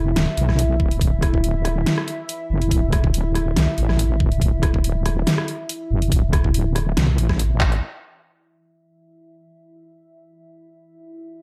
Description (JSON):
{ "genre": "deep dubstep", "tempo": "141 BPM", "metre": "4/4", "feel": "swing 53% on 16ths, half-time", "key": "unclear", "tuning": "A4 = 440 Hz", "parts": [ { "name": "dark analog pad", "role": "sustained chords", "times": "0.0-11.4 s", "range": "E4 to E5", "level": "-32 LUFS", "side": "equal", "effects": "chorus, phaser" }, { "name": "wobble bass", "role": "bass", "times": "0.0-7.8 s", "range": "D1 to C2", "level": "-22 LUFS", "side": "equal", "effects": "chorus" }, { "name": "dubstep drum kit", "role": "drums", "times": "0.2-7.8 s", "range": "handclaps, hi-hat, rim click, snare drum", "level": "-26 LUFS", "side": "equal", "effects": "overdrive, low-pass filter on hats, low-pass filter on snare, low-pass filter on room" }, { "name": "electronic kick drum", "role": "drums", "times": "0.8-7.7 s", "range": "none", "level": "-22 LUFS", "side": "equal", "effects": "overdrive" } ], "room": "digital ambience", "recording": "none", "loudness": "-20 LUFS", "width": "mono", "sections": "0.0-7.8 A section; 7.8-11.4 B section", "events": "drum fill 7.6; band accent 7.6", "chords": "0.0 E5; 1.0 D5; 7.8 N.C.", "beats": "0.16 0.59 | 1.01 1.44 1.86 2.29 | 2.71 3.14 3.56 3.99 | 4.42 4.84 5.27 5.69 | 6.12 6.54 6.97 7.39 | 7.82 8.25 8.67 9.10 | 9.52 9.95 10.37 10.80 | 11.22" }